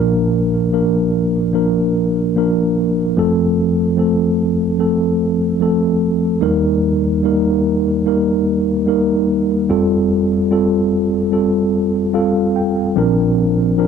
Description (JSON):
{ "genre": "folk", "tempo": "74 BPM", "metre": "4/4", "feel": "straight", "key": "Bb major", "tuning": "A4 = 440 Hz", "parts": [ { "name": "mellow tine electric piano", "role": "solo", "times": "0.0-13.9 s", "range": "F1 to G5", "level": "-14 LUFS", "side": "equal", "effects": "medium stereo tremolo" } ], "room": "moderate small room reverb, RT60 0.5 s", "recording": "dry, close 1970s-style studio recording", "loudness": "-14 LUFS", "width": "side -6 dB against mid", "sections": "0.0-13.0 A section", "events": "none", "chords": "0.0 Bb; 3.2 F; 6.4 Eb; 9.7 Fadd9; 13.0 Bbadd9", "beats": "0.73 1.55 2.36 | 3.18 3.99 4.81 5.62 | 6.44 7.25 8.06 8.88 | 9.69 10.51 11.33 12.15 | 12.98 13.79" }